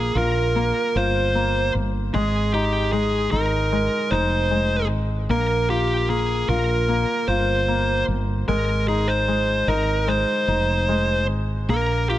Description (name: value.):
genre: pop ballad.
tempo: 75 BPM.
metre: 4/4.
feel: straight.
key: Ab major.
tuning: A4 = 441 Hz.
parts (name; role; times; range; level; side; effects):
fuzz lead guitar; melody; 0.0-12.2 s; G4 to C5; -23 LUFS; right 1 dB; distortion.
clear concert grand piano; accompaniment; 0.0-12.2 s; Ab3 to F4; -25 LUFS; left 2 dB; none.
woody fretless electric bass; bass; 0.0-12.2 s; F1 to Bb1; -24 LUFS; equal; none.
room: light reverb, small room ambience.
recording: none.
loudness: -19 LUFS.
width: side -14 dB against mid.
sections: 0.0-12.2 A section.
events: none.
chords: 0.0 Bbsus2; 2.1 Ab; 5.3 Bbsus2; 8.5 Ab.